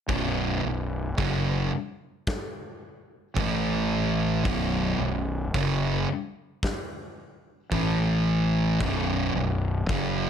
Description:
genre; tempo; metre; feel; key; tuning
stoner and doom metal; 55 BPM; 4/4; straight; unclear; A4 = 440 Hz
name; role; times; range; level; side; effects
fuzz guitar; riff; 0.1-10.3 s; B1 to A3; -27 LUFS; right 8 dB; distortion
thick fuzz guitar; riff; 0.1-10.3 s; B1 to A3; -28 LUFS; left 8 dB; distortion
fuzz fingered electric bass; bass; 0.1-10.3 s; B0 to A1; -31 LUFS; equal; overdrive
big rock drum kit; drums; 0.1-10.1 s; hi-hat, kick drum, snare drum; -32 LUFS; left 1 dB; none
room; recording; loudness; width
light reverb, studio ambience; none; -24 LUFS; side -8 dB against mid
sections
0.1-10.3 A section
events
none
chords
0.1 B5; 3.4 A5; 4.4 B5; 7.7 A5; 8.8 B5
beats
| 0.08 1.17 2.27 3.36 | 4.45 5.54 6.62 7.71 | 8.80 9.88

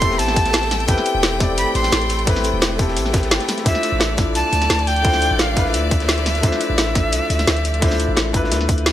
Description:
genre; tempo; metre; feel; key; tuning
liquid drum and bass; 173 BPM; 4/4; straight; unclear; A4 = 439 Hz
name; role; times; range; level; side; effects
breathy bright jazz flute; melody; 0.0-8.9 s; E5 to C6; -22 LUFS; right 1 dB; digital delay
felt-muted upright piano; accompaniment; 0.0-8.9 s; A3 to E5; -23 LUFS; left 2 dB; tape echo
bright chamber string section; sustained chords; 0.0-8.9 s; F3 to G5; -27 LUFS; left 3 dB; none
long sustained 808-style bass; bass; 0.0-8.9 s; E1 to D2; -22 LUFS; equal; tube saturation
crunchy breakbeat drum kit; drums; 0.0-8.9 s; hi-hat, snare drum; -29 LUFS; equal; high-pass filter on hats, high-pass filter on snare, high-pass filter on room
drum and bass drum kit; drums; 0.0-8.9 s; hi-hat, snare drum; -21 LUFS; equal; none
electronic kick drum; drums; 0.0-8.8 s; none; -18 LUFS; equal; overdrive
room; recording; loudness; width
light reverb, small room ambience; none; -15 LUFS; side -12 dB against mid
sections
0.0-8.9 A section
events
none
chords
0.0 Am9; 3.7 Dm9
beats
0.19 0.54 | 0.89 1.23 1.58 1.93 | 2.27 2.62 2.97 3.31 | 3.66 4.01 4.35 4.70 | 5.05 5.39 5.74 6.09 | 6.43 6.78 7.13 7.47 | 7.82 8.17 8.52 8.86

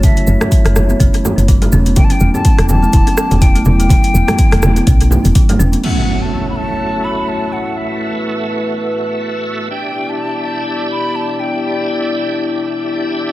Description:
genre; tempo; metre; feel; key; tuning
afro house; 124 BPM; 4/4; swing 56% on 16ths; F# phrygian; A4 = 439 Hz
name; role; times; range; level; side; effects
hollow concert flute; melody; 0.0-12.1 s; E5 to B5; -22 LUFS; left 1 dB; analog delay
dark analog pad; sustained chords; 0.0-13.3 s; A3 to D6; -21 LUFS; left 2 dB; chorus, vintage 12-bit sampler grit, sidechain pumping
woody FM bass; bass; 0.0-5.8 s; E1 to B1; -13 LUFS; equal; sidechain pumping
afro-pop drum kit; drums; 0.0-5.9 s; crash cymbal, hi-hat, rim click; -22 LUFS; left 1 dB; studio reverb, dub echo
electronic kick drum; drums; 0.0-5.5 s; none; -11 LUFS; equal; studio reverb
cabasa; percussion; 0.0-5.8 s; none; -29 LUFS; right 3 dB; none
congas; percussion; 0.0-5.7 s; none; -20 LUFS; right 1 dB; dub echo
kalimba; arpeggios; 0.4-5.8 s; E3 to E4; -20 LUFS; right 1 dB; sidechain pumping, analog delay
bright tonewheel organ; stabs; 5.8-13.3 s; A3 to E5; -22 LUFS; right 2 dB; chorus vibrato, slow rotary speaker, sidechain pumping, low-pass filter, dub echo
impact; sound effects; 5.8-7.8 s; none; -20 LUFS; equal; none
room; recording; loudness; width
light reverb, small room ambience; echo-heavy mix; -12 LUFS; side -17 dB against mid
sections
0.0-5.8 A section; 5.8-13.3 B section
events
impact 5.8-7.8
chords
0.0 F#m7; 2.0 Em7; 5.8 F#m7; 9.7 Em7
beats
| 0.03 0.52 1.00 1.48 | 1.97 2.45 2.93 3.42 | 3.90 4.39 4.87 5.35 | 5.84 6.32 6.80 7.29 | 7.77 8.26 8.74 9.22 | 9.71 10.19 10.68 11.16 | 11.64 12.13 12.61 13.10

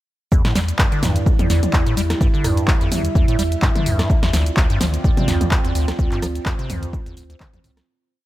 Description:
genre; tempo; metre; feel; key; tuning
acid house; 127 BPM; 4/4; swing 55% on 16ths; E phrygian; A4 = 440 Hz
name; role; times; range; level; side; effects
dark analog pad; sustained chords; 0.7-7.9 s; G3 to E5; -26 LUFS; right 3 dB; chorus, phaser, sidechain pumping
liquid acid bass; riff; 0.3-7.7 s; D1 to G3; -23 LUFS; equal; chorus
electronic kick drum; drums; 0.3-7.5 s; none; -18 LUFS; equal; none
punchy analog drum machine; drums; 0.3-7.9 s; handclaps, hi-hat, rim click, shaker, snare drum, toms; -24 LUFS; equal; none
warm sub bass; bass; 0.6-7.8 s; C2 to E2; -22 LUFS; equal; sidechain pumping
room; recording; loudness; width
little or no reverb; none; -16 LUFS; side -16 dB against mid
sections
0.3-7.9 drop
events
drop 0.3-7.9; fade-out 5.4-7.9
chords
0.3 Em7; 4.1 Dm7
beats
| 0.32 0.79 1.26 1.74 | 2.21 2.68 3.15 3.62 | 4.10 4.57 5.04 5.51 | 5.99 6.46 6.93 7.41

